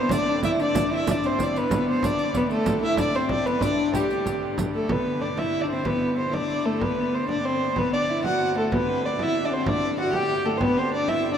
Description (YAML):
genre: medieval dance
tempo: 126 BPM (dotted quarters)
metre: 6/8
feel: straight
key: G major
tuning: A4 = 441 Hz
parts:
  - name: dark fiddle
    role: melody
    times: 0.0-11.4 s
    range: G4 to G5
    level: -26 LUFS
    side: right 1 dB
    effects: none
  - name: rich viola da gamba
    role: second line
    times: 0.0-11.4 s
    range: G3 to G4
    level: -25 LUFS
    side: left 2 dB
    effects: none
  - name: pipe organ, full organ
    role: drone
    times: 0.0-11.4 s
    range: G2 to D3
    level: -35 LUFS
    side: right 1 dB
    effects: none
  - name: frame drum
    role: percussion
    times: 0.1-11.3 s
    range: none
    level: -31 LUFS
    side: right 2 dB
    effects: none
  - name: riq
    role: percussion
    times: 0.1-4.7 s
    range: none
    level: -36 LUFS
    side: right 6 dB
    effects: none
room: wet cathedral reverb, RT60 6.6 s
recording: in a vast, echoing space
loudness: -21 LUFS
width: side -8 dB against mid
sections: 0.0-4.9 A section; 4.9-11.4 B section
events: none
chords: none